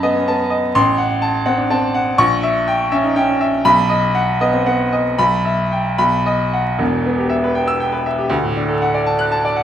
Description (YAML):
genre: classical, virtuoso piano study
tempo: 74-84 BPM (dotted quarters)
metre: 6/8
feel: rubato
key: E minor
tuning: A4 = 440 Hz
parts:
  - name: bright baby grand piano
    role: solo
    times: 0.0-9.6 s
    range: E1 to F#6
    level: -14 LUFS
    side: equal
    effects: none
room: wet recital hall reverb, RT60 1.4 s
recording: minimal, uncompressed stereo recording, vinyl crackle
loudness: -14 LUFS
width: side -10 dB against mid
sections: 0.0-6.8 A section; 6.8-9.6 B section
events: none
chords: 0.0 B7/F#; 0.7 F#dim/A; 2.2 A#dim7; 3.6 B; 5.2 Em/B; 6.0 B; 6.8 Em; 8.3 D